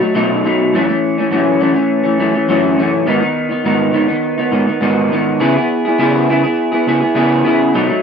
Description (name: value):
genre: indie pop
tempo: 103 BPM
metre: 4/4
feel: straight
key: unclear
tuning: A4 = 440 Hz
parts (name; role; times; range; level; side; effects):
- electric guitar through a small old amp; solo; 0.0-8.0 s; F#2 to G#4; -12 LUFS; equal; analog chorus, warbly pitch drift
room: moderate studio reverb, RT60 0.6 s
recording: rough home demo mix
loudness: -12 LUFS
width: side -6 dB against mid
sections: 0.0-8.0 A section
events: none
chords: 0.0 B7; 0.7 F#m7; 3.1 G#m; 5.4 C#m7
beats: 0.15 | 0.73 1.32 1.90 2.48 | 3.07 3.65 4.24 4.82 | 5.41 5.99 6.57 7.16 | 7.74